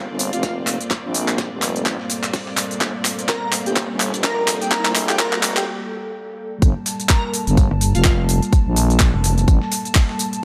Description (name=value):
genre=bass house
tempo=126 BPM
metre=4/4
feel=swing 58% on 16ths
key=G minor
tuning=A4 = 440 Hz
part: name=dark analog pad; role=sustained chords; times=0.0-10.4 s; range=G3 to A5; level=-31 LUFS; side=equal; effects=chorus, sidechain pumping
part: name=growling FM bass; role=bass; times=0.0-9.6 s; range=F1 to Bb1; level=-24 LUFS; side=equal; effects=overdrive, sidechain pumping, high-pass filter
part: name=riser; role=sound effects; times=2.1-5.7 s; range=none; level=-37 LUFS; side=equal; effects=none
part: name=rich studio string section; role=texture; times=0.0-5.7 s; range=Bb3 to D5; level=-32 LUFS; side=equal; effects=sidechain pumping
part: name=dusty soul sampler-style drum kit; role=drums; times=0.2-10.3 s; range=hi-hat, snare drum, tambourine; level=-36 LUFS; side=equal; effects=none
part: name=garage drum kit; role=drums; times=0.2-10.4 s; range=handclaps, hi-hat, shaker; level=-24 LUFS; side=equal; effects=none
part: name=airy dreamy lead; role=melody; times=0.3-8.1 s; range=F4 to Bb4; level=-28 LUFS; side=equal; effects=chorus, dub echo
part: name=electronic kick drum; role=drums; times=0.4-10.1 s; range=none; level=-18 LUFS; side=equal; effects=high-pass filter on kick, high-pass filter on room
part: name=pulsing pluck wobble bass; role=bass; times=7.7-9.5 s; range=F1 to G1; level=-20 LUFS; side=equal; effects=chorus, overdrive, sidechain pumping
room=light reverb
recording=high-pass filter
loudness=-19 LUFS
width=mono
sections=0.0-6.6 A section; 6.6-10.4 B section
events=build-up 0.0-6.6; drum fill 0.0-5.7; filter sweep on analog synth pad 0.0-6.6; break 5.7-6.6; drop 6.6-10.4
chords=0.0 Gmadd9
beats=0.43 | 0.91 1.38 1.86 2.33 | 2.81 3.29 3.76 4.24 | 4.72 5.19 5.67 6.14 | 6.62 7.10 7.57 8.05 | 8.53 9.00 9.48 9.95 | 10.43